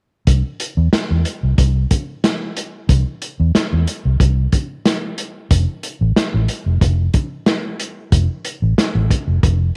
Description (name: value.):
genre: funk.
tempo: 92 BPM.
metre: 4/4.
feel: straight.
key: C major.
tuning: A4 = 439 Hz.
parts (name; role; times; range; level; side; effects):
vintage muted fingered electric bass; bass; 0.3-9.7 s; F1 to E2; -18 LUFS; equal; none.
vintage drum kit; drums; 0.3-9.6 s; hi-hat, kick drum, snare drum; -20 LUFS; equal; none.
room: light reverb.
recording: none.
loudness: -18 LUFS.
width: mono.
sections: 0.3-9.8 A section.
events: none.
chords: none.